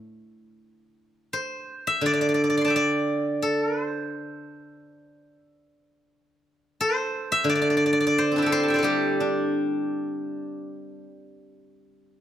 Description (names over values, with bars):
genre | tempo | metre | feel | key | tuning
chinese traditional, Chinese solo plucked strings | 76-91 BPM | 4/4 | rubato | unclear | A4 = 440 Hz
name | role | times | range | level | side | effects
steel-string zither | solo | 0.0-11.3 s | D3 to C6 | -22 LUFS | equal | none
room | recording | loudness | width
light reverb | close, detailed microphones | -22 LUFS | side -10 dB against mid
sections
0.0-11.8 A section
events
none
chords
none